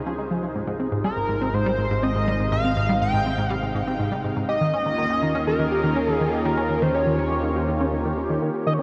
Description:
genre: ambient, sequencer-driven space music.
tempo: 122 BPM.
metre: 4/4.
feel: straight.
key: unclear.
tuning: A4 = 440 Hz.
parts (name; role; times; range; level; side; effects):
phased analog pad; sustained chords; 0.0-8.8 s; C3 to Bb4; -30 LUFS; equal; phaser, chorus.
analog drone; bass; 0.0-8.8 s; Ab1 to Eb2; -32 LUFS; equal; chorus, tube saturation.
tight sequenced synth; riff; 0.1-8.8 s; Ab2 to G4; -28 LUFS; equal; chorus, phaser, delay.
pulse-width lead; melody; 1.0-8.8 s; Bb4 to G5; -28 LUFS; equal; chorus, delay.
room: wet huge ambient reverb, RT60 8.4 s.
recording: worn, warbling old tape, cassette tape, warbly pitch drift.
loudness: -23 LUFS.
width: mono.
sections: 0.0-8.4 A section.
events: none.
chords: 0.0 Dbmaj7; 0.6 Ab; 4.5 Eb7.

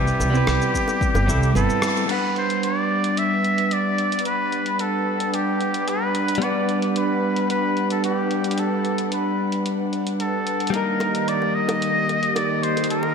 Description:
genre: sunset chillout.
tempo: 111 BPM.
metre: 4/4.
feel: straight.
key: G major.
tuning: A4 = 439 Hz.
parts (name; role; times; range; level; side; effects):
trumpet with straight mute; melody; 0.0-13.1 s; G4 to E5; -24 LUFS; left 1 dB; digital delay, shimmer reverb.
direct-recorded clean electric guitar; accompaniment; 0.0-13.1 s; G3 to F#5; -25 LUFS; moving between left 5 dB and right 5 dB; auto-pan, shimmer reverb.
upright bass; bass; 0.0-1.7 s; G1 to C2; -21 LUFS; equal; none.
dusty soul sampler-style drum kit; drums; 0.1-13.0 s; crash cymbal, hi-hat, rim click, shaker; -30 LUFS; equal; studio reverb.
bongos; percussion; 0.2-1.9, 10.7-13.1 s; none; -32 LUFS; right 1 dB; none.
electronic kick drum; drums; 0.7-1.4 s; none; -26 LUFS; equal; studio reverb.
airy breathy pad; sustained chords; 2.1-13.1 s; Eb3 to F#5; -25 LUFS; equal; chorus, vintage 12-bit sampler grit, shimmer reverb.
room: wet lush hall reverb, RT60 1.7 s.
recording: bright 1980s-style digital production.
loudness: -19 LUFS.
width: side -6 dB against mid.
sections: 0.0-2.1 A section; 2.1-13.1 B section.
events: band accent 1.8.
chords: 0.0 Cmaj7; 2.1 Gmaj7; 10.7 Eb.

